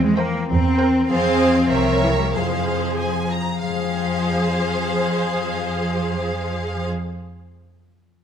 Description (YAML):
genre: cinematic, playful, whimsical film cue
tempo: 97 BPM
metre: 2/4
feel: straight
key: F minor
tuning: A4 = 441 Hz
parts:
  - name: concert harp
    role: arpeggios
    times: 0.0-7.7 s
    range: C3 to Bb5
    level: -27 LUFS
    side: left 9 dB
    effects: none
  - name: rich studio cello section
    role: bass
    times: 0.0-6.9 s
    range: E3 to C4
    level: -23 LUFS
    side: right 2 dB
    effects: none
  - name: warm studio double bass section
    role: bass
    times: 0.0-6.9 s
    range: C2 to F2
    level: -26 LUFS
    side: right 3 dB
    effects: none
  - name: rich studio violin section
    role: melody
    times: 0.2-6.9 s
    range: E5 to Bb5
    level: -28 LUFS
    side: left 4 dB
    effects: none
  - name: dark studio violin section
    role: second line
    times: 0.2-6.9 s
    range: C5 to Db5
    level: -27 LUFS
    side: equal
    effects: none
  - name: warm studio viola section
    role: accompaniment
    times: 0.2-6.9 s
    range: Ab4 to Bb4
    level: -26 LUFS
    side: right 2 dB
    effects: none
room: moderate scoring stage reverb, RT60 1.4 s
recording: none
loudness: -18 LUFS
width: side -8 dB against mid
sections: 0.0-3.6 A section; 3.6-6.1 B section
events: none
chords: 0.0 C7/E; 1.1 Fm; 1.7 C7b9; 2.3 Fm